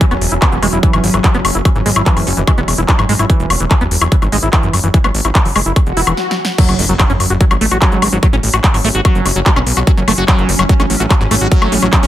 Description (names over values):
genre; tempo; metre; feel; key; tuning
psychedelic trance; 146 BPM; 4/4; straight; F# minor; A4 = 440 Hz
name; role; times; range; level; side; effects
pulsing gated texture; sustained chords; 0.0-12.1 s; F#3 to C#4; -22 LUFS; equal; chorus, built-in reverb, sidechain pumping
liquid acid bass; riff; 0.0-12.1 s; E3 to F#4; -18 LUFS; equal; chorus, auto-pan, sidechain pumping, dub echo
big-room dance drum kit; drums; 0.0-12.1 s; crash cymbal, handclaps, hi-hat, snare drum, woodblock; -17 LUFS; left 2 dB; overdrive
electronic kick drum; drums; 0.0-12.0 s; none; -12 LUFS; equal; none
fat analog bass; bass; 0.1-12.1 s; E1 to B1; -16 LUFS; equal; tube saturation
resonant blip pluck; second line; 0.4-2.8 s; G#3 to C#4; -32 LUFS; right 3 dB; none
swell and impact; sound effects; 5.9-8.2 s; none; -22 LUFS; left 1 dB; none
room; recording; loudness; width
light reverb, digital ambience; none; -10 LUFS; side -13 dB against mid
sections
0.0-6.6 A section; 6.6-12.1 B section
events
swell 5.9-6.6; drum fill 6.2-6.6; stop 6.2-6.6; drop 6.6-12.1; impact 6.6-8.2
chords
0.0 E5; 6.6 F#5